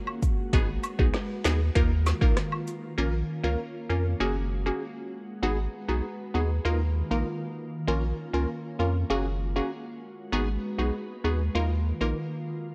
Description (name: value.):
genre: dancehall.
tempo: 98 BPM.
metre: 4/4.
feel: straight.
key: G# dorian.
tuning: A4 = 440 Hz.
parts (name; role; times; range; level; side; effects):
glassy FM pad; sustained chords; 0.0-12.7 s; D#3 to B4; -38 LUFS; equal; ensemble chorus, built-in reverb, sidechain pumping.
woodblock and cabasa; percussion; 0.1-2.8 s; none; -36 LUFS; equal; none.
afro-pop drum kit; drums; 0.2-2.8 s; finger snaps, hi-hat, kick drum, rim click, snare drum; -28 LUFS; equal; none.
wavetable chord stab; accompaniment; 0.5-12.2 s; A#3 to A#4; -33 LUFS; equal; none.
warm sub bass; bass; 0.5-12.1 s; F#1 to E#2; -29 LUFS; equal; none.
room: light reverb, digital ambience.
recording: worn, warbling old tape, cassette tape, warbly pitch drift.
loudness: -28 LUFS.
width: mono.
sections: 0.0-3.0 A section; 3.0-12.7 B section.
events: none.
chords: 0.0 F#add9; 0.5 G#m7; 1.8 D#sus2; 3.0 A#m; 4.2 F#add9; 5.4 G#m7; 6.7 D#sus2; 7.9 A#m; 9.1 F#add9; 10.3 G#m7; 11.6 D#sus2.